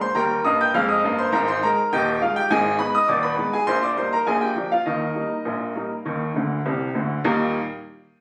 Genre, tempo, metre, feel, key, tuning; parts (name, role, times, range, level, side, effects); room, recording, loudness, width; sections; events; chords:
ragtime piano; 102 BPM; 2/4; straight; Eb major; A4 = 440 Hz
bright upright piano; solo; 0.0-7.6 s; Eb1 to G6; -22 LUFS; equal
light reverb; recorded on a phone in the room, studio reverb; -22 LUFS; mono
0.0-7.2 A section
upright piano fill 6.3-7.2
0.2 Eb; 2.5 Abm; 3.7 Eb/Bb; 4.3 Bb7; 4.9 Eb